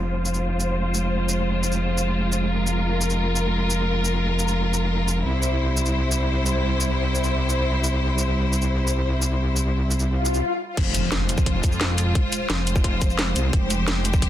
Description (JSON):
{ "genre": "dark technical drum and bass", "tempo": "174 BPM", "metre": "4/4", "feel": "straight", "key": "F harmonic minor", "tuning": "A4 = 440 Hz", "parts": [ { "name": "rich symphonic string section", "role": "sustained chords", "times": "0.0-14.3 s", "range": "G3 to C5", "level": "-26 LUFS", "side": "equal", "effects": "sidechain pumping, low-pass filter" }, { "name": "metallic wobble bass", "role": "bass", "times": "0.0-14.3 s", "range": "F1 to F2", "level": "-23 LUFS", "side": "equal", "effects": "chorus, tube saturation, sidechain pumping" }, { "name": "drum and bass drum kit", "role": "drums", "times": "0.3-14.3 s", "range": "crash cymbal, hi-hat, shaker, snare drum", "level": "-27 LUFS", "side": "equal", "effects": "none" }, { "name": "swell and impact", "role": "sound effects", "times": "10.2-12.2 s", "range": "none", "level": "-28 LUFS", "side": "left 1 dB", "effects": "none" }, { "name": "electronic kick drum", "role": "drums", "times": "10.8-14.3 s", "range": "none", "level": "-21 LUFS", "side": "equal", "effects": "none" } ], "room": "light reverb, digital ambience", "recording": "dense, heavily limited modern master", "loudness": "-20 LUFS", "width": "side -12 dB against mid", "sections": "0.0-10.8 A section; 10.8-14.3 B section", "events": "swell 10.2-10.8; stop 10.4-10.8; drop 10.8-14.3; impact 10.8-12.2", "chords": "0.0 Fm; 5.3 C; 10.8 Fm", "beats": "0.08 0.43 0.77 | 1.12 1.46 1.81 2.15 | 2.50 2.84 3.19 3.53 | 3.88 4.22 4.57 4.91 | 5.26 5.60 5.95 6.29 | 6.63 6.98 7.33 7.67 | 8.01 8.36 8.70 9.05 | 9.39 9.74 10.08 10.43 | 10.77 11.12 11.46 11.81 | 12.15 12.50 12.84 13.19 | 13.53 13.88 14.22" }